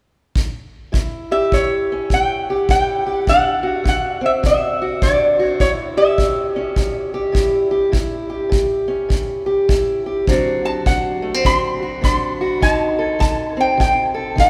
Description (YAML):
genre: acoustic country blues, solo or duo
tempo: 103 BPM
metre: 4/4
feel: swing 63% on 8ths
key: unclear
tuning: A4 = 441 Hz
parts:
  - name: kick drum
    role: drums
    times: 0.4-14.5 s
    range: none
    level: -23 LUFS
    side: equal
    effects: none
  - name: fingerpicked steel-string acoustic guitar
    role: accompaniment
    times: 0.9-14.5 s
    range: A2 to A4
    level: -22 LUFS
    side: equal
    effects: none
  - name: lap resonator guitar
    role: melody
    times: 1.3-6.5, 10.7-14.5 s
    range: C#5 to C6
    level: -20 LUFS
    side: equal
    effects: none
room: moderate cathedral reverb, RT60 6.8 s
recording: recorded in a church or concert hall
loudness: -18 LUFS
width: mono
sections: 0.9-14.5 A section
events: none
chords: 0.0 N.C.; 0.9 A7; 3.3 D7; 5.6 A7; 10.3 D7; 12.6 D#dim7